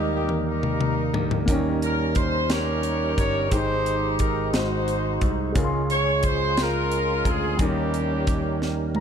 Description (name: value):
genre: slow gospel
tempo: 59 BPM (dotted quarters)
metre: 6/8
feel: straight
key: unclear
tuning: A4 = 441 Hz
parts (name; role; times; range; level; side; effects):
- clear horn section; melody; 0.0-9.0 s; Bb3 to Db5; -26 LUFS; left 1 dB; none
- warm baby grand piano; accompaniment; 0.0-9.0 s; Ab2 to C6; -30 LUFS; equal; none
- percussive tonewheel organ; sustained chords; 0.0-9.0 s; G3 to C5; -30 LUFS; right 6 dB; fast rotary speaker, overdrive, chorus vibrato
- modern bright picked electric bass; bass; 0.0-9.0 s; G1 to Eb2; -28 LUFS; equal; none
- crisp fusion drum kit; drums; 0.3-9.0 s; hi-hat, kick drum, snare drum, toms; -27 LUFS; left 1 dB; none
room: light reverb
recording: none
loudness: -21 LUFS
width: side -8 dB against mid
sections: 0.0-9.0 A section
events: drum fill 0.0-1.5, 8.6-9.0; grand piano fill 8.6-9.0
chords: 0.0 Eb; 1.5 Eb7; 3.5 Abmaj7; 4.5 Ab7; 5.6 Dbmaj7; 7.6 Eb7